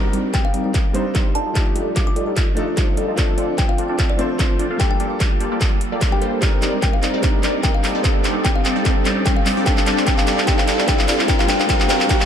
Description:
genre	future bass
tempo	148 BPM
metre	4/4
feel	swing 55% on 16ths, half-time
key	G minor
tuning	A4 = 440 Hz
part	clear baby grand piano	accompaniment	0.0-12.3 s	F3 to C5	-25 LUFS	left 1 dB	sidechain pumping, ping-pong delay
part	supersaw stab	riff	0.0-12.2 s	G3 to G5	-23 LUFS	equal	phaser, sidechain pumping, low-pass filter
part	riser and reverse cymbal	sound effects	0.0-12.3 s	none	-29 LUFS	equal	none
part	dubstep drum kit	drums	0.1-12.3 s	handclaps, hi-hat	-24 LUFS	equal	none
part	kalimba	melody	0.3-12.3 s	D5 to D6	-26 LUFS	left 4 dB	sidechain pumping, digital delay
part	electronic kick drum	drums	0.3-12.2 s	none	-19 LUFS	equal	distortion
room	moderate lush hall reverb, RT60 1.6 s, digital ambience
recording	dark, warm production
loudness	-16 LUFS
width	side -8 dB against mid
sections	0.0-12.3 A section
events	build-up 0.0-12.3; drum fill 0.0-12.3; riser 0.0-12.3; filter sweep on supersaw synth 0.0-12.3; reverse cymbal 12.1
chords	0.0 Cm9; 1.4 F13; 3.2 Dm7; 4.8 Gm9; 6.4 Cm9; 7.8 F13; 9.7 D5; 11.3 Gm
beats	0.34 0.74 1.15 | 1.55 1.96 2.37 2.77 | 3.17 3.58 3.99 4.39 | 4.80 5.20 5.61 6.01 | 6.42 6.82 7.23 7.63 | 8.04 8.45 8.85 9.26 | 9.66 10.07 10.47 10.88 | 11.28 11.69 12.09

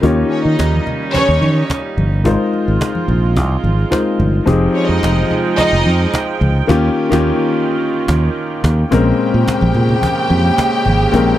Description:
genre	disco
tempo	108 BPM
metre	4/4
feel	straight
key	Bb dorian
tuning	A4 = 440 Hz
part	warm concert grand piano	accompaniment	0.0-11.4 s	Bb2 to Db5	-18 LUFS	left 4 dB	none
part	warm studio string section	sustained chords	0.0-11.4 s	Db3 to G5	-21 LUFS	right 5 dB	none
part	fingered electric bass	bass	0.0-11.3 s	F1 to Eb3	-14 LUFS	equal	none
part	cajon	drums	0.0-11.3 s	none	-21 LUFS	right 1 dB	none
part	rich studio string section	second line	0.3-11.4 s	Db4 to G5	-18 LUFS	equal	none
part	congas	percussion	0.6-11.3 s	none	-24 LUFS	equal	none
room	little or no reverb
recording	dry, close 1970s-style studio recording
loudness	-12 LUFS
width	side -13 dB against mid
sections	0.0-8.9 A section; 8.9-11.4 B section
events	band accent 6.7-8.9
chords	0.0 Eb9; 2.3 Ab69; 4.5 Fm9; 6.7 Eb9; 8.9 Bbm9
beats	| 0.04 0.59 1.15 1.70 | 2.25 2.81 3.36 3.92 | 4.47 5.03 5.58 6.14 | 6.69 7.25 7.80 8.36 | 8.92 9.47 10.03 10.58 | 11.14

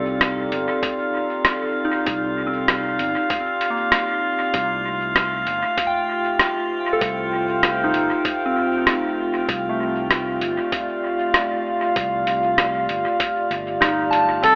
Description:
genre	ambient dub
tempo	97 BPM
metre	4/4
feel	swing 57% on 16ths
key	C dorian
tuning	A4 = 440 Hz
part	warbly tape-like pad	sustained chords	0.0-14.6 s	A3 to G5	-27 LUFS	equal	chorus, built-in reverb
part	soft synth bell	arpeggios	0.0-14.6 s	A3 to A5	-29 LUFS	equal	chorus, phaser, dub echo
part	fingered electric bass	bass	0.0-14.6 s	G1 to C2	-35 LUFS	equal	none
part	drifting glass-harmonics texture	texture	0.0-14.6 s	F4 to G5	-27 LUFS	equal	chorus, built-in reverb
part	lo-fi sampler-style drum kit	drums	0.2-14.6 s	hi-hat, rim click	-24 LUFS	equal	overdrive, dub echo
part	electronic kick drum	drums	0.8-14.6 s	none	-34 LUFS	equal	overdrive
part	melodica	melody	14.4-14.6 s	A4	-14 LUFS	equal	none
room	moderate echo chamber reverb, RT60 1.5 s, digital ambience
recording	telephone sound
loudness	-21 LUFS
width	mono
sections	0.0-14.6 A section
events	none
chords	0.0 Cmadd9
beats	0.21 0.83 1.45 | 2.06 2.68 3.30 3.92 | 4.54 5.16 5.78 6.39 | 7.01 7.63 8.25 8.87 | 9.49 10.11 10.72 11.34 | 11.96 12.58 13.20 13.82 | 14.44

